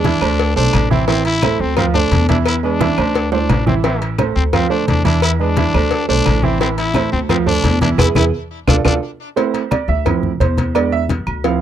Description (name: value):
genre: latin, salsa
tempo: 174 BPM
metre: 4/4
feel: straight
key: A harmonic minor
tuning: A4 = 440 Hz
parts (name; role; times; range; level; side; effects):
- growling trumpet; melody; 0.0-8.9 s; C4 to E4; -20 LUFS; left 4 dB; tape echo
- clear grand piano; accompaniment; 0.0-11.6 s; E3 to F5; -18 LUFS; right 8 dB; none
- upright bass; bass; 0.0-11.6 s; A1 to E2; -19 LUFS; left 1 dB; none
- agogo bells and timbales; percussion; 0.0-11.4 s; none; -27 LUFS; right 8 dB; none
- congas; percussion; 0.0-11.6 s; none; -20 LUFS; left 3 dB; none
- cowbell; percussion; 0.0-11.6 s; none; -24 LUFS; left 9 dB; none
- claves; percussion; 0.2-11.4 s; none; -32 LUFS; left 5 dB; none
room: little or no reverb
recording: dry, close 1970s-style studio recording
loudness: -13 LUFS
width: side -10 dB against mid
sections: 0.0-9.4 A section; 9.4-11.6 B section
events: drum fill 2.8-3.8, 8.5-9.4; band accent 8.0-9.4; grand piano solo 9.4-11.6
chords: 0.4 D5; 1.1 Am; 1.8 Dm7; 2.5 E7; 3.2 Am; 4.5 Dm7; 5.2 E7; 5.9 D5; 6.6 Am; 7.3 Dm7; 8.0 E; 8.7 Dm; 9.4 Am; 10.1 Dm7; 10.8 E7